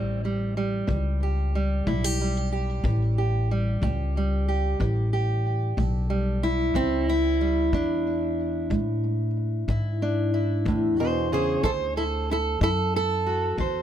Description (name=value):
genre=acoustic country blues, solo or duo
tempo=62 BPM (dotted quarters)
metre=12/8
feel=straight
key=A mixolydian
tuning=A4 = 440 Hz
part: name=fingerpicked steel-string acoustic guitar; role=melody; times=0.0-13.8 s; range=E2 to C5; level=-26 LUFS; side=right 1 dB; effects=tape echo
part: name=upright bass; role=bass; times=0.0-13.8 s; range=A1 to A2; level=-26 LUFS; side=equal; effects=none
part: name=kick drum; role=drums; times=0.9-13.7 s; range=none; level=-30 LUFS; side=left 2 dB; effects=none
room=little or no reverb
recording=close, detailed microphones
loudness=-23 LUFS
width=side -10 dB against mid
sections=0.0-13.8 A section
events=none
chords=0.0 A7; 7.7 E7; 11.6 D7